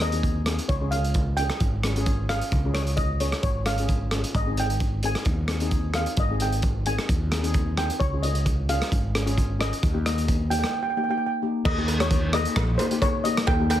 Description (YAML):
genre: calypso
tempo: 131 BPM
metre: 4/4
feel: swing 54% on 16ths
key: Ab major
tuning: A4 = 440 Hz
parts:
  - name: steel pan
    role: melody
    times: 0.0-13.8 s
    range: C5 to Ab5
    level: -29 LUFS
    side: right 1 dB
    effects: none
  - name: steel pan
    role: accompaniment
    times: 0.0-13.7 s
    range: Bb3 to Ab4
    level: -30 LUFS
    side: left 4 dB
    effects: none
  - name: mellow fretless electric bass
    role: bass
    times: 0.0-13.8 s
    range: Ab1 to Eb2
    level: -26 LUFS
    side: equal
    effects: none
  - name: crunchy breakbeat drum kit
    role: drums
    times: 0.0-13.8 s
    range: crash cymbal, hi-hat, kick drum, rim click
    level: -26 LUFS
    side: equal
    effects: none
  - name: cowbell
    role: percussion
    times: 11.7-13.8 s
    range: none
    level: -33 LUFS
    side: equal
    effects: none
room: light reverb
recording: heavily compressed radio sound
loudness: -22 LUFS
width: side -12 dB against mid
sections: 0.0-11.7 A section; 11.7-13.8 B section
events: break 10.7-11.7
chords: 0.0 Ab; 0.7 Db; 4.3 Ab; 8.0 Db; 9.8 Eb